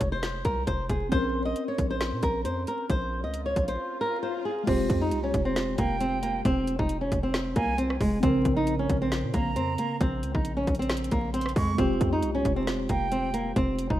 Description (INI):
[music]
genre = hip hop, trap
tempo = 135 BPM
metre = 4/4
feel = half-time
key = F minor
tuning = A4 = 440 Hz
[part]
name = flamenco guitar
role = melody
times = 0.0-14.0 s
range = Ab3 to Eb5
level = -28 LUFS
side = equal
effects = none
[part]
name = mellow tine electric piano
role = accompaniment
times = 0.0-14.0 s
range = Db3 to Bb4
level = -33 LUFS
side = equal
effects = medium stereo tremolo
[part]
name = hard-hitting 808-style bass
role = bass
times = 0.0-14.0 s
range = F1 to Bb2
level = -31 LUFS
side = equal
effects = none
[part]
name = trap drum kit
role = drums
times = 0.0-14.0 s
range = crash cymbal, hi-hat, kick drum, rim click, snare drum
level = -30 LUFS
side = equal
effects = none
[part]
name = swell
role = sound effects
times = 3.5-4.7 s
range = none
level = -38 LUFS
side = left 6 dB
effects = none
[part]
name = silver concert flute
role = second line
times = 5.8-13.5 s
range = G5 to Db6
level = -33 LUFS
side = right 4 dB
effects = tape echo
[sound]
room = light reverb, digital ambience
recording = rough home demo mix, vinyl crackle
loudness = -24 LUFS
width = side -13 dB against mid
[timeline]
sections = 0.0-4.7 A section; 4.7-14.0 B section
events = swell 3.5-4.7; drums muted 3.8-4.7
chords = 0.0 Fmadd9; 1.1 Bbmadd9; 4.7 Fmadd9; 8.2 Bbmadd9; 11.8 Fmadd9